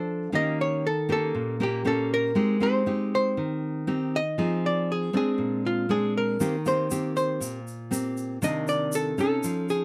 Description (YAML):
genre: bossa nova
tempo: 119 BPM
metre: 4/4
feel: straight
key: unclear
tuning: A4 = 440 Hz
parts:
  - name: archtop guitar, miked and amplified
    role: melody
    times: 0.0-9.8 s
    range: F4 to Eb5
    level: -29 LUFS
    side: equal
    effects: none
  - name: nylon-string guitar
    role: accompaniment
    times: 0.0-9.8 s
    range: Bb2 to C5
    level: -29 LUFS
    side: equal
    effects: none
  - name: egg shaker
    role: percussion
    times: 6.4-9.8 s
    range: none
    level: -41 LUFS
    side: equal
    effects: none
room: little or no reverb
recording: close, detailed microphones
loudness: -26 LUFS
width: mono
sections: 0.0-9.8 A section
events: none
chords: 0.3 Eb7; 2.4 Abmaj7; 4.4 Fm7; 5.4 Bb9; 6.4 Eb6; 8.4 Cm9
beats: | 0.33 0.84 1.34 1.85 | 2.35 2.86 3.36 3.87 | 4.37 4.88 5.38 5.89 | 6.39 6.90 7.41 7.91 | 8.42 8.92 9.43